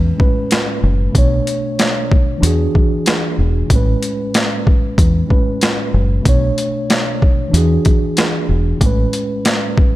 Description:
hip hop, boom-bap hip-hop; 94 BPM; 4/4; swing 56% on 16ths; A4 = 440 Hz
mellow tine electric piano; accompaniment; 0.0-10.0 s; A2 to C#5; -19 LUFS; right 1 dB; medium stereo tremolo, cassette tape, high-pass filter, low-pass filter
deep dub fingered electric bass; bass; 0.0-9.1 s; E1 to E2; -15 LUFS; equal
boom bap sampler-style drum kit; drums; 0.2-9.9 s; hi-hat, kick drum, snare drum; -14 LUFS; equal; overdrive
little or no reverb; -13 LUFS; side -16 dB against mid
0.0-10.0 A section
0.0 Amaj9; 1.1 Bm9; 2.4 E9; 3.7 Amaj9; 6.3 Bm9; 7.5 E9; 8.8 Amaj9

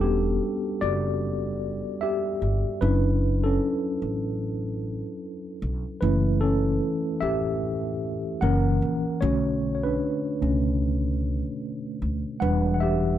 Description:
lo-fi hip hop; 75 BPM; 4/4; swing 57% on 16ths; E dorian; A4 = 440 Hz
mellow tine electric piano; accompaniment; 0.0-13.2 s; B2 to F#5; -25 LUFS; equal; medium stereo tremolo, low-pass filter
upright bass; bass; 0.0-13.2 s; E1 to D2; -26 LUFS; equal
moderate studio reverb, RT60 0.6 s; dark, warm production; -23 LUFS; side -11 dB against mid
0.0-13.2 A section
tine electric piano solo 0.0-13.2
0.0 Em9; 2.8 Dmaj9/F#; 6.0 F#m7; 8.4 F#7; 9.2 Bm7; 12.4 Em9

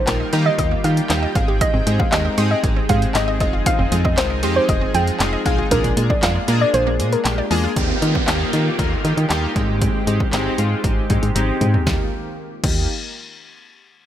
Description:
dance-pop; 117 BPM; 4/4; straight; Eb major; A4 = 441 Hz
soft round pluck; melody; 0.0-7.2 s; Bb4 to G5; -22 LUFS; right 1 dB; chorus, sidechain pumping
chorused retro synth keys; accompaniment; 0.0-12.9 s; G3 to Bb4; -24 LUFS; left 1 dB; low-pass filter
lush unison pad; sustained chords; 0.0-12.1 s; Eb3 to G5; -29 LUFS; equal; chorus, sidechain pumping, low-pass filter
wide unison pluck; arpeggios; 0.0-7.7 s; D3 to C6; -30 LUFS; moving between left 1 dB and right 6 dB; auto-pan, sidechain pumping, digital delay
solid FM bass; bass; 0.1-12.9 s; F1 to Eb3; -20 LUFS; equal; sidechain pumping
punchy analog drum machine; drums; 0.1-12.8 s; crash cymbal, handclaps, hi-hat, kick drum, snare drum, toms; -21 LUFS; equal
downlifter; sound effects; 7.8-11.9 s; -28 LUFS; right 2 dB
little or no reverb; -16 LUFS; side -11 dB against mid
0.0-7.8 A section; 7.8-11.9 B section; 11.9-13.9 C section
drop 0.0-7.8; kick muted 6.7-7.8; drum fill 11.4-11.9
0.0 Ebadd9; 1.4 Abmaj7; 3.4 Fm7; 5.7 Bb7; 7.8 Ebadd9; 9.6 Abmaj7; 11.9 Ebadd9

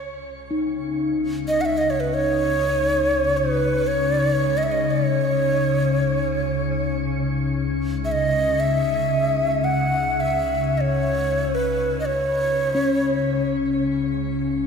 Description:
world meditative, free-time meditation music; free time; C# minor; A4 = 438 Hz
soft additive organ-like pad; drone; 0.6-14.7 s; C#2 to C#3; -24 LUFS; left 2 dB; ensemble chorus, built-in reverb
bronze singing bowl; texture; 0.5-14.7 s; C#4 to D#4; -28 LUFS; left 3 dB; stereo widening, shimmer reverb
mellow hollow Native American-style cedar flute; melody; 1.5-13.5 s; B4 to F#5; -22 LUFS; right 1 dB; shimmer reverb, tape echo
wet church reverb, RT60 3.3 s; -19 LUFS; side -6 dB against mid
0.0-14.7 A section

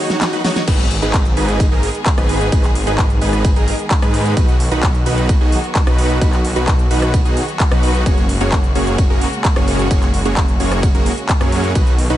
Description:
EDM, festival progressive house; 130 BPM; 4/4; straight; A4 = 440 Hz
clear symphonic string section; sustained chords; 0.0-12.2 s; C#3 to G#4; -25 LUFS; equal; sidechain pumping
dense compressed supersaw; riff; 0.0-12.2 s; A#3 to C#5; -21 LUFS; right 2 dB; sidechain pumping, tape echo
big-room dance drum kit; drums; 0.1-12.2 s; crash cymbal, handclaps, hi-hat, ride cymbal, rim click, snare drum; -23 LUFS; equal; small room ambience
detuned saw bass; bass; 0.7-12.2 s; F#1 to G#2; -19 LUFS; equal; sidechain pumping
electronic kick drum; drums; 0.7-11.8 s; -15 LUFS; equal; small room ambience
light reverb, digital ambience; nothing above 10.8 kHz; -13 LUFS; side -13 dB against mid
0.7-12.2 A section
break 0.0-0.7; drum fill 0.0-0.7; drop 0.7-12.2
0.0 B; 0.7 G#m; 4.4 B; 8.1 F#add9

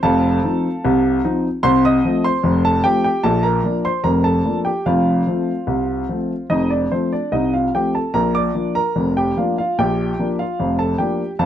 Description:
ragtime piano; 74 BPM; 2/4; straight; Bb major; A4 = 440 Hz
warm baby grand piano; solo; 0.0-11.5 s; F1 to Eb6; -16 LUFS; equal
moderate studio reverb, RT60 0.8 s; dark, warm production; -16 LUFS; side -10 dB against mid
0.0-11.5 A section
0.0 F7; 1.6 F7/C; 3.3 Bb; 4.9 F; 8.1 Bb

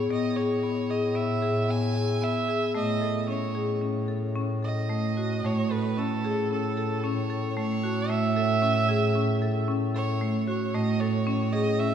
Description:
contemporary instrumental, chamber music in an uneven meter; 113 BPM; 5/4; straight; A lydian; A4 = 440 Hz
clear violin; melody; 0.0-11.9 s; A4 to G#5; -30 LUFS; right 4 dB
marimba with hard mallets; arpeggios; 0.0-11.9 s; A3 to A4; -27 LUFS; left 1 dB
warm bass clarinet; bass; 0.0-11.9 s; A2; -30 LUFS; equal
wet cathedral reverb, RT60 4.6 s; recorded in a church or concert hall; -24 LUFS; side -8 dB against mid
0.0-5.4 A section; 5.4-11.9 A section
0.0 E/A; 2.8 A

